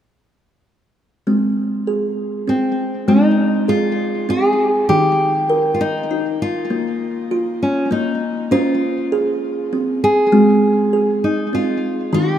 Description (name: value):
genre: world meditative, meditative tuned percussion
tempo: 99 BPM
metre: 3/4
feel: swing 54% on 16ths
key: Ab major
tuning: A4 = 441 Hz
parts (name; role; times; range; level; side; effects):
- kalimba; arpeggios; 1.3-12.4 s; Eb3 to C5; -17 LUFS; right 1 dB; shimmer reverb
- nylon-string guitar; melody; 2.5-12.4 s; C4 to Ab4; -18 LUFS; left 1 dB; shimmer reverb, tape echo
room: wet spring reverb, RT60 2.6 s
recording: echo-heavy mix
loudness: -15 LUFS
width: side -10 dB against mid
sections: 1.3-3.1 A section; 3.1-12.4 B section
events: none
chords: 1.3 Ab; 4.9 Eb; 6.7 Bb5; 8.5 Db; 10.3 Ab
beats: | 1.27 1.87 2.48 | 3.08 3.69 4.29 | 4.89 5.50 6.10 | 6.70 7.31 7.91 | 8.51 9.12 9.72 | 10.32 10.93 11.53 | 12.13